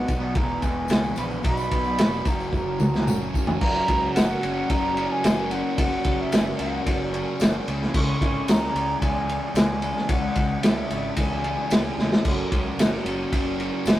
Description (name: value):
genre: psychedelic rock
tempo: 111 BPM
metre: 4/4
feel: straight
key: unclear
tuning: A4 = 440 Hz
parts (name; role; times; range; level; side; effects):
- mellow silver concert flute; melody; 0.0-11.9 s; E5 to C#6; -28 LUFS; right 1 dB; none
- pedal harmonium; sustained chords; 0.0-14.0 s; C#4 to B4; -34 LUFS; right 4 dB; none
- fuzz guitar; riff; 0.0-14.0 s; E2 to C#4; -29 LUFS; left 1 dB; distortion, phaser
- fuzz fingered electric bass; bass; 0.0-14.0 s; E1 to E2; -32 LUFS; equal; overdrive
- crunchy breakbeat drum kit; drums; 0.1-14.0 s; crash cymbal, kick drum, ride cymbal, snare drum, toms; -23 LUFS; equal; none
- tambourine; percussion; 0.1-14.0 s; none; -44 LUFS; left 6 dB; none
room: moderate stone room reverb, RT60 1.2 s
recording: rough rehearsal-room recording, tube saturation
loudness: -21 LUFS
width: side -14 dB against mid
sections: 0.0-3.6 A section; 3.6-14.0 B section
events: drum fill 2.5-3.6, 12.0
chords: 0.4 E; 1.5 B; 2.3 F#; 7.7 C#m; 12.3 F#